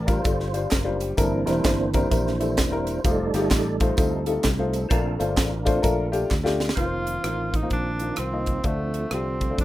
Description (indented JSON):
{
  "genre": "uptempo gospel",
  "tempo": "129 BPM",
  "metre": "4/4",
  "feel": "swing 63% on 8ths",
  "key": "unclear",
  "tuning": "A4 = 440 Hz",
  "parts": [
    { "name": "warm upright piano", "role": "accompaniment", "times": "0.0-9.6 s", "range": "G2 to Eb5", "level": "-26 LUFS", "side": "left 3 dB", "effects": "none" },
    { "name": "percussive tonewheel organ", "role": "sustained chords", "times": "0.0-9.6 s", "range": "D3 to D5", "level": "-29 LUFS", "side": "right 3 dB", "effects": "fast rotary speaker, chorus vibrato" },
    { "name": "fingered electric bass", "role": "bass", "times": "0.0-9.6 s", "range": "E1 to F2", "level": "-29 LUFS", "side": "equal", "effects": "none" },
    { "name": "crisp fusion drum kit", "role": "drums", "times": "0.1-9.6 s", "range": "hi-hat, kick drum, rim click, snare drum", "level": "-24 LUFS", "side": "equal", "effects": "none" },
    { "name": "tambourine and handclaps", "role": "percussion", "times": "0.1-6.7 s", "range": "none", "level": "-40 LUFS", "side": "right 3 dB", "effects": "none" },
    { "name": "breathy tenor saxophone", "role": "melody", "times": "6.8-9.6 s", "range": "A3 to F4", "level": "-29 LUFS", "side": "right 1 dB", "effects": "none" }
  ],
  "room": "light reverb",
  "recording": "rough home demo mix",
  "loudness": "-21 LUFS",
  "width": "side -15 dB against mid",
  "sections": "0.0-6.8 A section; 6.8-9.6 B section",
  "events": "tonewheel organ solo 0.0-6.8; drum fill 6.3-6.8",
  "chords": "0.0 Gm7; 1.2 C7; 3.0 F7; 4.9 Bbmaj7; 6.8 F7sus4; 8.6 Dm7",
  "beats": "0.26 0.72 | 1.19 1.65 2.12 2.58 | 3.05 3.51 3.98 4.44 | 4.91 5.37 5.84 6.31 | 6.77 7.24 7.71 8.18 | 8.65 9.12 9.58"
}